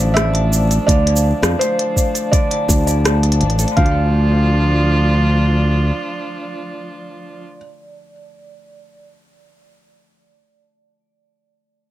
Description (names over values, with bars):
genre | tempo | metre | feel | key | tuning
folktronica | 83 BPM | 4/4 | straight | D minor | A4 = 438 Hz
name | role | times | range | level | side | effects
felt-muted upright piano | melody | 0.0-7.6 s | C5 to F5 | -22 LUFS | right 1 dB | ping-pong delay, plate reverb
vibraphone with medium hard mallets | second line | 0.0-9.2 s | C5 to A5 | -27 LUFS | left 2 dB | tape echo
muted string quartet | sustained chords | 0.0-7.4 s | F3 to F4 | -24 LUFS | right 2 dB | plate reverb
Celtic harp | arpeggios | 0.0-10.3 s | D3 to A4 | -27 LUFS | equal | ping-pong delay, plate reverb
modern bright fingered electric bass | bass | 0.0-5.9 s | A1 to F2 | -15 LUFS | equal | none
organic electronic drum kit | drums | 0.2-3.9 s | cabasa, hi-hat, rim click | -20 LUFS | equal | overdrive
electronic kick drum | drums | 0.9-3.9 s | none | -16 LUFS | equal | overdrive
room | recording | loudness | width
light reverb | none | -13 LUFS | side -14 dB against mid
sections
0.0-3.8 A section; 3.8-6.7 B section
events
none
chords
0.0 Dmadd9; 3.8 Dm